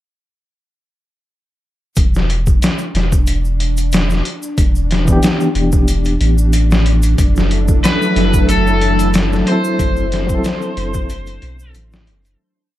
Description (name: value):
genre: trip hop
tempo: 92 BPM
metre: 4/4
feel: swing 54% on 16ths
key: E minor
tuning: A4 = 441 Hz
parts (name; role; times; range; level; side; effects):
- soft dub sub bass; bass; 2.0-12.4 s; E1 to B1; -16 LUFS; equal; none
- trip hop sampler-style drum kit; drums; 2.0-12.4 s; hi-hat, kick drum, snare drum; -16 LUFS; equal; none
- tube shaker; percussion; 2.0-12.4 s; none; -32 LUFS; left 2 dB; none
- bowed-like drone; texture; 2.6-12.4 s; D4; -25 LUFS; equal; built-in reverb
- barky reed electric piano; accompaniment; 5.0-12.4 s; E3 to A4; -19 LUFS; equal; overdrive, fast tremolo, tape echo
- string machine, cellos; sustained chords; 7.2-12.4 s; F#3 to A4; -19 LUFS; equal; ensemble chorus
- overdriven slide guitar; melody; 7.8-11.7 s; A4 to C5; -20 LUFS; left 3 dB; tape echo
room: little or no reverb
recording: dark, warm production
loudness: -12 LUFS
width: side -14 dB against mid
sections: 2.0-12.4 groove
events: fade-out 8.9-12.4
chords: 2.0 Em7; 7.2 F#m7b5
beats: | 1.97 2.62 3.27 3.92 | 4.58 5.23 5.88 6.53 | 7.18 7.84 8.49 9.14 | 9.79 10.45 11.10 11.75